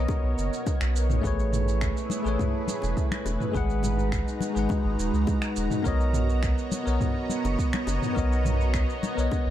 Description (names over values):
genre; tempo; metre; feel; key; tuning
sunset chillout; 104 BPM; 4/4; straight; B major; A4 = 440 Hz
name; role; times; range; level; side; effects
bell-like tine electric piano; accompaniment; 0.0-9.5 s; G#3 to F#5; -30 LUFS; moving between left 6 dB and right 4 dB; auto-pan, digital delay
lush unison pad; sustained chords; 0.0-9.5 s; G#3 to A#5; -32 LUFS; equal; chorus, phaser
warm sub bass; bass; 0.0-9.5 s; D#1 to C#2; -26 LUFS; equal; none
deep house drum kit; drums; 0.1-9.4 s; finger snaps, shaker, toms; -34 LUFS; right 1 dB; none
electronic kick drum; drums; 0.1-9.4 s; none; -29 LUFS; equal; none
bongos and congas; percussion; 0.1-9.4 s; none; -34 LUFS; left 4 dB; none
room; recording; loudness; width
light reverb, digital ambience; dark, warm production; -24 LUFS; side -12 dB against mid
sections
0.0-9.5 A section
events
none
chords
0.0 Bmaj9; 1.2 Amaj9; 3.5 G#m7; 5.9 Bmaj9